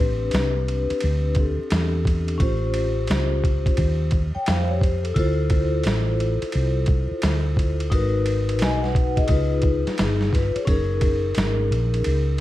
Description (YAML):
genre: hip hop, jazz-hop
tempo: 87 BPM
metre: 4/4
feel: swing 63% on 16ths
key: unclear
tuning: A4 = 440 Hz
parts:
  - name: vibraphone with soft mallets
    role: accompaniment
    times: 0.0-12.4 s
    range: C4 to G#5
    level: -25 LUFS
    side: left 2 dB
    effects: none
  - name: woody fretless electric bass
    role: bass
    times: 0.0-12.4 s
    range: F#1 to E#2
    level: -23 LUFS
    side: equal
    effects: none
  - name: boom bap sampler-style drum kit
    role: drums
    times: 0.3-12.4 s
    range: hi-hat, kick drum, ride cymbal, snare drum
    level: -24 LUFS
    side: equal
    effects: none
room: little or no reverb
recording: dark, warm production, vinyl crackle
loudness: -19 LUFS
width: side -15 dB against mid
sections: 0.0-12.4 A section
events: none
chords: 0.0 Am11; 2.4 A7alt; 5.2 Dm9; 7.9 G#m7; 9.3 C#9; 10.7 F#69